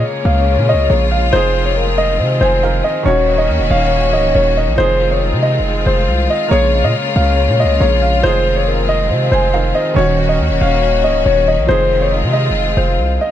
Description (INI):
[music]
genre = hip hop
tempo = 139 BPM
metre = 4/4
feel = half-time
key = unclear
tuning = A4 = 440 Hz
[part]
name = dark grand piano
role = melody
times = 0.0-13.3 s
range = C5 to F5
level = -17 LUFS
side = left 1 dB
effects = digital delay
[part]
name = soft octave-layered synth lead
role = second line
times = 0.0-13.3 s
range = Bb4 to F5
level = -20 LUFS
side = left 5 dB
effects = chorus, tremolo, digital delay
[part]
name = felt-muted upright piano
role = accompaniment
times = 0.0-13.3 s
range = Eb3 to Ab5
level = -23 LUFS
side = right 8 dB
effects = none
[part]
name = rich symphonic string section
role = sustained chords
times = 0.0-13.3 s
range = Db3 to Gb4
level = -20 LUFS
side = left 2 dB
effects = none
[part]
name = hard-hitting 808-style bass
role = bass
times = 0.0-13.2 s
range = Db1 to C3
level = -16 LUFS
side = equal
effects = none
[sound]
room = small room ambience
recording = none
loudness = -12 LUFS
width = side -11 dB against mid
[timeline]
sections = 0.0-13.3 A section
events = none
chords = 0.0 Bbm7; 1.3 Fm7; 3.1 Ebm7; 4.8 Fm7; 6.5 Bbm7; 8.2 Fm7; 10.0 Ebm7; 11.7 Fm7